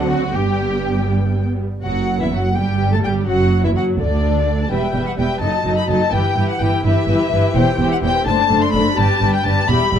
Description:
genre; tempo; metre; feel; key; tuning
quick classical-period movement for string orchestra; 84 BPM (dotted quarters); 6/8; straight; unclear; A4 = 440 Hz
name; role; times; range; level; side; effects
rich chamber violin section; melody; 0.0-10.0 s; D5 to C6; -21 LUFS; left 5 dB; none
warm symphonic violin section; second line; 0.0-10.0 s; D4 to E5; -24 LUFS; left 3 dB; none
warm symphonic viola section; accompaniment; 0.0-10.0 s; D3 to G4; -21 LUFS; right 1 dB; none
dark symphonic double bass section; bass; 0.0-10.0 s; E1 to D2; -20 LUFS; right 2 dB; none
warm symphonic cello section; bass; 0.0-10.0 s; D2 to D3; -23 LUFS; right 3 dB; none
room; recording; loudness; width
light reverb; dark, warm production; -15 LUFS; side -8 dB against mid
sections
0.0-1.8 A section; 1.8-10.0 B section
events
none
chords
0.3 G; 1.8 Esus2/F#; 2.6 Gsus2; 3.3 D/F#; 4.7 Em; 5.4 D#dim/F#; 6.1 Em/G; 7.6 C/E; 8.3 D7/F#; 9.0 G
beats
| 0.34 1.09 | 1.85 2.57 | 3.28 4.00 | 4.71 5.42 | 6.12 6.84 | 7.55 8.27 | 8.98 9.69

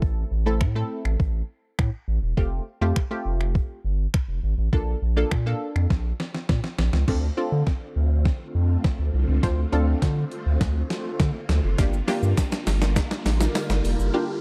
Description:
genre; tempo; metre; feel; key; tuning
dance-pop; 102 BPM; 4/4; straight; D minor; A4 = 441 Hz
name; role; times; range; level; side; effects
punchy chord stab; accompaniment; 0.0-14.3 s; A3 to C5; -31 LUFS; equal; chorus, sidechain pumping
round analog bass; bass; 0.0-14.1 s; E1 to D3; -25 LUFS; equal; sidechain pumping
gated 80s digital drum machine; drums; 0.0-14.1 s; crash cymbal, finger snaps, hi-hat, kick drum, shaker, snare drum; -27 LUFS; equal; gated reverb, gated reverb snare, overdrive
phased string machine; sustained chords; 7.1-14.4 s; D3 to F4; -35 LUFS; equal; ensemble chorus, phaser, sidechain pumping
riser; sound effects; 8.5-14.4 s; none; -42 LUFS; equal; none
tambourine; percussion; 12.4-13.7 s; none; -48 LUFS; equal; none
room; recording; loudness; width
little or no reverb; dry, close 1970s-style studio recording; -24 LUFS; mono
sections
0.0-7.1 A section; 7.1-14.4 B section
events
drum fill 5.9-7.1, 7.1-14.1; build-up 7.1-14.4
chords
0.0 Am; 2.4 Fadd9; 4.7 Bbmaj7; 7.1 Dm7; 11.8 Gm7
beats
| 0.02 0.61 1.20 1.79 | 2.38 2.96 3.55 4.14 | 4.73 5.32 5.90 6.49 | 7.08 7.67 8.26 8.85 | 9.43 10.02 10.61 11.20 | 11.79 12.38 12.96 13.55 | 14.14

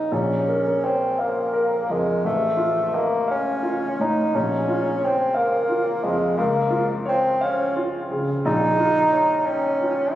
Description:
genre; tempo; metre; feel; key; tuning
classical, romantic duo for bassoon and grand piano; 58 BPM (dotted quarters); 6/8; rubato; Bb minor; A4 = 441 Hz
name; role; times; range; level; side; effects
warm bassoon; melody; 0.0-10.1 s; Ab3 to Eb4; -21 LUFS; equal; none
clear grand piano; accompaniment; 0.0-10.2 s; A1 to G5; -24 LUFS; equal; none
room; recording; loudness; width
wet church reverb, RT60 2.7 s; recorded on a phone in the room, studio ambience, compression; -19 LUFS; side -13 dB against mid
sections
0.1-10.2 A section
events
none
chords
0.1 Bbm; 2.2 F7/A; 4.3 Bbm; 6.4 Bbm/Db; 8.4 Gm7b5/Bb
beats
| 0.11 1.19 | 2.24 3.29 | 4.34 5.36 | 6.38 7.41 | 8.44 9.46

